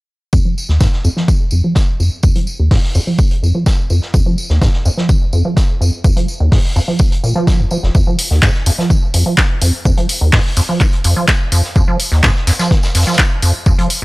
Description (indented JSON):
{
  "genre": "acid house",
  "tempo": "126 BPM",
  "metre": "4/4",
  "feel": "straight",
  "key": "F minor",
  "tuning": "A4 = 441 Hz",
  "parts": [
    { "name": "deep acid bass", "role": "riff", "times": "0.3-14.0 s", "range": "F1 to F3", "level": "-15 LUFS", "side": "equal", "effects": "lush chorus" },
    { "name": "electronic kick drum", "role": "drums", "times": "0.3-13.8 s", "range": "none", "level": "-13 LUFS", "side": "equal", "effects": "overdrive" },
    { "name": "vintage drum kit", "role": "drums", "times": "0.3-14.0 s", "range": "hi-hat, snare drum, tambourine", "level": "-25 LUFS", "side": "equal", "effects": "high-pass filter on hats, high-pass filter on snare, high-pass filter on perc, high-pass filter on room" },
    { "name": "punchy analog drum machine", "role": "drums", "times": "8.2-14.0 s", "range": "handclaps, hi-hat", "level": "-17 LUFS", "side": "equal", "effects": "overdrive" }
  ],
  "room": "small room ambience",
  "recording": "dry, gritty hardware recording, transformer saturation",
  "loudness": "-11 LUFS",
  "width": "side -22 dB against mid",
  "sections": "0.3-14.0 A section",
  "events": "filter sweep on acid bass 0.3-14.0",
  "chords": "none"
}